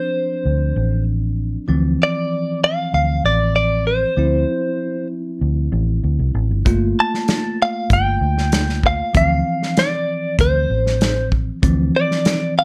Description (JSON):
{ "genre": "straight-eighth soul blues", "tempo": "97 BPM", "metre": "4/4", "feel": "straight", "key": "D minor", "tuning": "A4 = 440 Hz", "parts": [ { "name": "direct-recorded clean electric guitar", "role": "melody", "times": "0.0-12.6 s", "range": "C5 to A5", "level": "-22 LUFS", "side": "equal", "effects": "none" }, { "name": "bell-like tine electric piano", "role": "accompaniment", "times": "0.0-12.6 s", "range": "E3 to F4", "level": "-26 LUFS", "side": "equal", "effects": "none" }, { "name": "vintage muted fingered electric bass", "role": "bass", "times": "0.5-11.9 s", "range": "G1 to D2", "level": "-21 LUFS", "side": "equal", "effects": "none" }, { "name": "warm soul drum kit", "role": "drums", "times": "6.7-12.4 s", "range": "hi-hat, kick drum, snare drum", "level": "-21 LUFS", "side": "equal", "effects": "none" } ], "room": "light reverb", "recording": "none", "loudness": "-18 LUFS", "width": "mono", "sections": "0.0-12.6 A section", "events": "none", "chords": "0.0 Dm9; 6.7 Gm9; 9.1 Dm9", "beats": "0.45 1.07 | 1.69 2.31 2.93 3.55 | 4.17 4.79 5.41 6.03 | 6.66 7.28 7.90 8.52 | 9.14 9.76 10.38 11.01 | 11.63 12.25" }